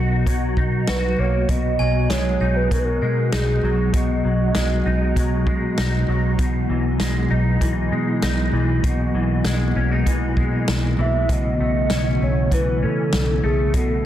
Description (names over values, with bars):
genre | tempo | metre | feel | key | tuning
dream pop | 98 BPM | 4/4 | straight | unclear | A4 = 440 Hz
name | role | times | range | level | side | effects
mellow tonewheel organ | sustained chords | 0.0-14.1 s | B2 to F#4 | -25 LUFS | right 1 dB | chorus vibrato, wide subtle chorus
clean electric guitar | arpeggios | 0.0-14.1 s | B2 to F#4 | -24 LUFS | left 2 dB | ensemble chorus, digital delay
vintage muted fingered electric bass | bass | 0.0-14.0 s | B1 to B2 | -23 LUFS | equal | none
vintage drum kit | drums | 0.3-13.9 s | hi-hat, kick drum, snare drum | -24 LUFS | equal | none
hollow clarinet-like synth lead | melody | 0.9-5.1, 11.0-14.1 s | G#4 to E5 | -25 LUFS | right 2 dB | chorus, digital delay
glockenspiel with brass mallets | texture | 1.8-2.9 s | G#5 | -34 LUFS | right 3 dB | digital delay
room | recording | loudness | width
moderate concert hall reverb, RT60 2.0 s | dense, heavily limited modern master | -18 LUFS | side -12 dB against mid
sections
0.0-14.1 A section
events
none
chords
0.0 Bmaj7; 1.5 G#m7/B; 6.4 Emaj7/B; 11.3 A/B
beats
0.27 0.88 | 1.49 2.10 2.72 3.33 | 3.94 4.55 5.17 5.78 | 6.39 7.00 7.62 8.23 | 8.84 9.45 10.06 10.68 | 11.29 11.90 12.51 13.12 | 13.74